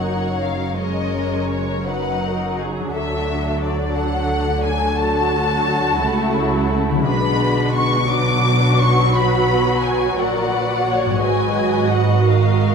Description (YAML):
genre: cinematic, emotional film score for orchestra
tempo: 58 BPM (dotted quarters)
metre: 6/8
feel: rubato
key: unclear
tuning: A4 = 440 Hz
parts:
  - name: muted symphonic violin section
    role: melody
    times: 0.0-12.7 s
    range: C#5 to D6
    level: -23 LUFS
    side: left 3 dB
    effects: none
  - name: muted symphonic violin section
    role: second line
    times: 0.0-12.7 s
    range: F#4 to D#5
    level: -24 LUFS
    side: left 2 dB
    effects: none
  - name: muted symphonic viola section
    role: accompaniment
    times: 0.0-12.7 s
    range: D#3 to F#4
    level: -23 LUFS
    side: right 2 dB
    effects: none
  - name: concert harp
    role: arpeggios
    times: 0.0-12.7 s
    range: F#2 to G#4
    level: -29 LUFS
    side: left 10 dB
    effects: none
  - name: muted symphonic cello section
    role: bass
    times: 0.0-12.7 s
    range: F#2 to D3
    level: -23 LUFS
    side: right 1 dB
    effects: none
  - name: muted symphonic double bass section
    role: bass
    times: 0.0-12.7 s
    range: F#1 to D2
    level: -24 LUFS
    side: right 3 dB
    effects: none
room: moderate scoring stage reverb, RT60 1.9 s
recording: none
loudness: -16 LUFS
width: side -6 dB against mid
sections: 0.0-12.7 A section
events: none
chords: 0.0 F#; 2.9 D; 7.1 Bm; 11.2 G#m7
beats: | 0.78 1.88 | 2.93 3.96 | 5.00 6.04 | 7.08 8.10 | 9.14 10.18 | 11.22 12.27